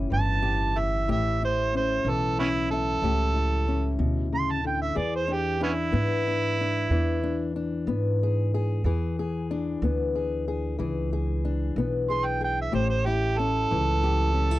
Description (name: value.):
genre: acoustic country blues, solo or duo.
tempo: 62 BPM (dotted quarters).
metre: 12/8.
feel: straight.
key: unclear.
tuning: A4 = 440 Hz.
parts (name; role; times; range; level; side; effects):
fingerpicked old ladder-braced acoustic guitar; accompaniment; 0.0-14.6 s; A2 to G#4; -29 LUFS; left 4 dB; none.
upright bass; bass; 0.0-14.6 s; G1 to G#2; -27 LUFS; right 1 dB; none.
overdriven harmonica; melody; 0.1-14.6 s; B3 to C6; -27 LUFS; right 3 dB; none.
room: little or no reverb.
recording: dry, close 1970s-style studio recording.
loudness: -24 LUFS.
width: side -16 dB against mid.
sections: 0.0-14.6 A section.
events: harmonica solo 0.0-14.6.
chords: 0.0 A7; 5.0 E7; 12.7 A7.